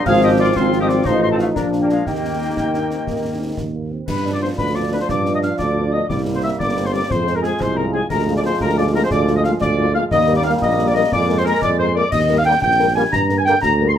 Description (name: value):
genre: military-style march for wind band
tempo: 119 BPM (dotted quarters)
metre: 6/8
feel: straight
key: Eb major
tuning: A4 = 439 Hz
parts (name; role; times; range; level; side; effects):
- mellow euphonium; second line; 0.0-4.1 s; Bb3 to F4; -26 LUFS; right 4 dB; none
- warm woodwind section; second line; 0.0-14.0 s; Ab3 to C6; -26 LUFS; left 1 dB; none
- wooden piccolo; second line; 0.0-13.9 s; F5 to C7; -25 LUFS; left 3 dB; none
- warm trombone section; sustained chords; 0.0-13.5 s; D3 to Eb4; -24 LUFS; right 1 dB; none
- dark cornet; melody; 0.1-14.0 s; F4 to C6; -22 LUFS; equal; none
- mellow French horn section; accompaniment; 0.1-13.9 s; Eb3 to Bb4; -23 LUFS; left 6 dB; none
- mellow tuba; bass; 0.1-14.0 s; G1 to G2; -21 LUFS; right 3 dB; none
- concert snare drum, clash cymbals and concert bass drum; drums; 0.1-13.8 s; none; -28 LUFS; left 1 dB; none
room: moderate studio reverb, RT60 0.6 s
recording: none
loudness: -15 LUFS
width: side -9 dB against mid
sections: 0.0-4.1 A section; 4.1-14.0 B section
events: none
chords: 0.1 Fm/Ab; 1.1 F7/A; 1.6 Bb; 2.1 Eb; 4.1 G7; 6.1 C5; 7.1 Fm; 8.1 Bb7/D; 10.1 Eb; 11.1 Bb5/F; 12.1 Eb; 13.1 Gm